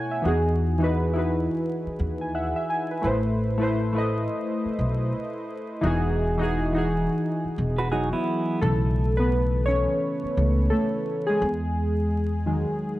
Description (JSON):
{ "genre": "lo-fi hip hop", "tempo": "86 BPM", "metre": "4/4", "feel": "swing 61% on 16ths", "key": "E major", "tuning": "A4 = 440 Hz", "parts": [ { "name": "warm analog keys", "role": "accompaniment", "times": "0.0-13.0 s", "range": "B2 to G#5", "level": "-24 LUFS", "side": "equal", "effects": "chorus, low-pass filter, plate reverb" }, { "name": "upright bass", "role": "bass", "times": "0.3-12.6 s", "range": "E1 to E2", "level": "-25 LUFS", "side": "equal", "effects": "none" }, { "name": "semi-hollow electric guitar", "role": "second line", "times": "7.8-8.6 s", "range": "B3 to B4", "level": "-29 LUFS", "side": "right 3 dB", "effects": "low-pass filter, tape echo, plate reverb" } ], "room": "moderate studio reverb, RT60 0.6 s", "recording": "dark, warm production, vinyl crackle", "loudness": "-22 LUFS", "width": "side -16 dB against mid", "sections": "0.0-8.6 A section; 8.6-13.0 A section", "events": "synth keys fill 2.0-3.0; synth keys solo 8.6-13.0", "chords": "0.2 Emaj9; 3.0 Amadd9; 5.8 Emaj9; 8.6 B9sus4; 11.4 Emaj9", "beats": "| 0.24 0.94 1.64 2.34 | 3.03 3.73 4.43 5.13 | 5.83 6.52 7.22 7.92 | 8.62 9.31 10.01 10.71 | 11.41 12.10 12.80" }